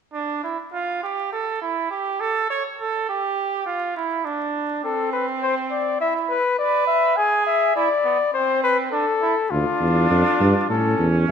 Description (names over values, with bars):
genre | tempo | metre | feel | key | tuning
classical, imitative canzona for brass ensemble | 102 BPM | 4/4 | straight | unclear | A4 = 442 Hz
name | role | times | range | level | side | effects
warm trumpet | second line | 0.1-11.3 s | B3 to C#5 | -23 LUFS | right 6 dB | none
warm cornet | melody | 4.8-11.1 s | F4 to G#5 | -20 LUFS | left 5 dB | none
mellow tuba | bass | 9.5-11.3 s | D2 to A2 | -19 LUFS | equal | none
room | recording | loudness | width
moderate scoring stage reverb, RT60 1.6 s | minimal, uncompressed stereo recording, vinyl crackle | -19 LUFS | side -7 dB against mid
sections
0.1-11.3 A section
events
none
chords
0.1 N.C.; 4.8 Am/C; 6.0 E5; 7.2 E/G#; 8.3 Am/C; 9.5 Dm; 10.7 A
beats
| 0.13 0.73 1.32 1.91 | 2.50 3.08 3.67 4.25 | 4.84 5.42 6.00 6.58 | 7.17 7.76 8.34 8.93 | 9.52 10.11 10.70 11.29